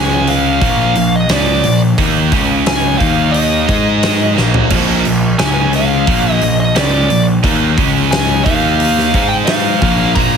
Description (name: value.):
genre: hard rock.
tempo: 88 BPM.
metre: 4/4.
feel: straight.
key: unclear.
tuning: A4 = 440 Hz.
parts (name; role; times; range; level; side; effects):
bluesy overdriven lead guitar; melody; 0.0-10.4 s; D5 to Bb5; -17 LUFS; left 1 dB; distortion, tape echo.
cranked stack guitar; riff; 0.0-10.4 s; Bb2 to Ab4; -17 LUFS; right 16 dB; overdrive, spring reverb.
sludgy distorted guitar; riff; 0.0-10.4 s; Bb2 to Ab4; -18 LUFS; left 13 dB; overdrive.
fuzz picked electric bass; bass; 0.0-10.4 s; Bb1 to Ab2; -17 LUFS; equal; overdrive.
huge arena drum kit; drums; 0.3-10.3 s; crash cymbal, hi-hat, kick drum, snare drum, toms; -18 LUFS; right 1 dB; none.
room: light reverb.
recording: heavily compressed radio sound.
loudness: -10 LUFS.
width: side -6 dB against mid.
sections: 0.0-10.4 A section.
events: drum fill 4.4-4.7.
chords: 0.0 Db5; 0.6 Bb5; 2.3 Db5; 3.0 Eb5; 3.7 Ab5; 4.4 Bb5; 5.4 Db5; 6.1 Bb5; 7.8 Db5; 8.5 Eb5; 9.1 Ab5; 9.8 Bb5.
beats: 0.62 1.30 | 1.98 2.67 3.35 4.03 | 4.71 5.39 6.07 6.76 | 7.44 8.12 8.80 9.48 | 10.17.